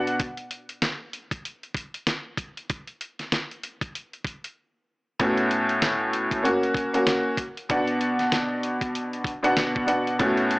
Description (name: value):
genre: hip hop, boom-bap hip-hop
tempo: 96 BPM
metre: 4/4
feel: swing 60% on 16ths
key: B minor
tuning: A4 = 440 Hz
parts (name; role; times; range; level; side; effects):
- clear upright piano; accompaniment; 0.0-0.2, 5.2-10.6 s; A2 to F#5; -22 LUFS; equal; cassette tape, high-pass filter, low-pass filter
- dusty soul sampler-style drum kit; drums; 0.1-10.6 s; hi-hat, kick drum, snare drum; -28 LUFS; equal; none
room: little or no reverb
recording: small speaker sound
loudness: -23 LUFS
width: side -24 dB against mid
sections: 0.0-10.6 A section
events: break 0.2-5.2; drums muted 4.6-5.2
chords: 0.2 N.C.; 5.2 A6; 6.4 F#; 7.7 Bm